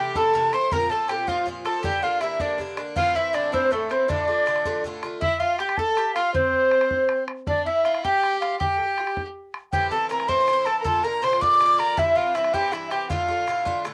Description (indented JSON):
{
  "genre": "celtic folk, Celtic jig",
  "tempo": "106 BPM (dotted quarters)",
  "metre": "6/8",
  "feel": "straight",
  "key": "D minor",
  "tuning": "A4 = 441 Hz",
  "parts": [
    { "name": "bright reedy wooden flute", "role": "melody", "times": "0.0-13.8 s", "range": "A4 to D6", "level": "-24 LUFS", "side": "equal", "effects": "none" },
    { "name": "mandolin", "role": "second line", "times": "0.0-13.8 s", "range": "A3 to D5", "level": "-32 LUFS", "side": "equal", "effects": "cassette tape" },
    { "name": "rich fiddle", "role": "second line", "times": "0.0-13.8 s", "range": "A3 to D5", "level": "-31 LUFS", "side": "equal", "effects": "cassette tape" },
    { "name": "Irish bouzouki", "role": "accompaniment", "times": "0.0-5.2, 9.7-13.9 s", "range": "G2 to F4", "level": "-35 LUFS", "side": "equal", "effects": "cassette tape" },
    { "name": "bodhran", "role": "percussion", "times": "0.2-13.9 s", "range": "none", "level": "-36 LUFS", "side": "equal", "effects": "none" }
  ],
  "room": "wet booth ambience, RT60 0.2 s",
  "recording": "home recording on cassette",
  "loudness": "-23 LUFS",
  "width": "mono",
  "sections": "0.0-5.2 A section; 5.2-13.9 B section",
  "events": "none",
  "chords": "0.0 Am; 0.7 Bbsus2; 1.8 Gm; 3.0 Am; 4.1 Dm; 5.2 N.C.; 9.7 Am; 10.8 Bb; 12.0 C; 13.1 Dm",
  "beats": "0.15 | 0.71 1.27 | 1.84 2.40 | 2.96 3.53 | 4.09 4.65 | 5.22 5.78 | 6.34 6.91 | 7.47 8.03 | 8.60 9.16 | 9.72 10.28 | 10.85 11.41 | 11.97 12.54 | 13.10 13.66"
}